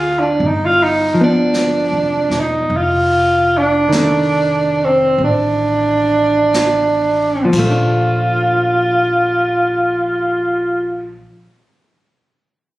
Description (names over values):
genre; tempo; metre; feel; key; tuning
jazz ballad; 40-55 BPM; 4/4; swing 69% on 8ths; Bb major; A4 = 441 Hz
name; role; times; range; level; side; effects
breathy tenor saxophone; melody; 0.0-11.2 s; C4 to F4; -14 LUFS; right 1 dB; none
hollow-body jazz guitar; accompaniment; 0.0-11.4 s; D3 to D4; -19 LUFS; left 1 dB; none
upright bass; bass; 0.0-11.2 s; E1 to D2; -23 LUFS; equal; none
jazz brush drum kit; drums; 0.4-7.7 s; brushed snare drum, crash cymbal, hi-hat, kick drum, snare drum; -28 LUFS; equal; none
room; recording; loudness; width
light reverb; recorded on a phone in the room, studio reverb; -13 LUFS; side -16 dB against mid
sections
0.0-2.7 A section; 2.7-8.0 B section; 8.0-12.8 C section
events
slowing down 0.0-8.0; tenor saxophone solo 0.0-2.7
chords
0.4 G7; 2.7 F6; 7.3 Bbmaj7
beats
0.41 1.54 | 2.70 3.92 5.19 6.54 | 7.99 9.50 11.00